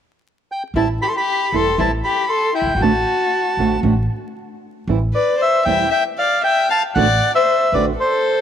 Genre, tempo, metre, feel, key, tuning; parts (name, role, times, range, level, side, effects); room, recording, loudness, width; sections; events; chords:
tango; 116 BPM; 4/4; rubato; A minor; A4 = 441 Hz
bandoneon; melody; 0.5-8.4 s; C5 to C6; -18 LUFS; right 2 dB
upright bass; bass; 0.7-7.9 s; E1 to A1; -22 LUFS; equal
warm violin; second line; 0.8-8.4 s; E4 to F5; -20 LUFS; left 7 dB
flamenco guitar; accompaniment; 0.8-7.9 s; D3 to F#4; -22 LUFS; right 6 dB
moderate plate reverb, RT60 3.0 s; 1960s-style stereo with parts hard left and right, vinyl crackle; -15 LUFS; side -9 dB against mid
0.8-4.9 A section; 4.9-8.4 B section
0.0 N.C.; 0.8 Am7; 2.8 D7/A; 4.9 Am7; 7.0 D7/A